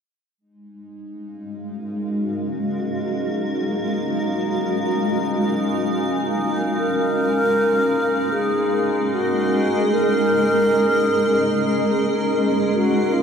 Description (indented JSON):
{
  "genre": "ambient",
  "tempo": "free time",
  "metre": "none",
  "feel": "none",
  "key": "unclear",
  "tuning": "A4 = 437 Hz",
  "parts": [
    { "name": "granular cloud pad", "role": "sustained chords", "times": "1.2-13.2 s", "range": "G#3 to E#5", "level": "-22 LUFS", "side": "equal", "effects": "built-in reverb" },
    { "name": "overtone-sweeping drone", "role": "drone", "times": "0.9-13.2 s", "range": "G#3 to D#4", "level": "-26 LUFS", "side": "equal", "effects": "chorus, built-in reverb" },
    { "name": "bright reedy wooden-headed alto flute", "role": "melody", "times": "6.8-13.2 s", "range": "E#4 to A#4", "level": "-20 LUFS", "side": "equal", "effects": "diffuse ambient delay" }
  ],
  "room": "wet huge ambient reverb, RT60 8.0 s",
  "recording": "none",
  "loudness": "-18 LUFS",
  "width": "side -7 dB against mid",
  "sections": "0.4-13.1 A section",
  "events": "none",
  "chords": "0.4 F#maj7/G#"
}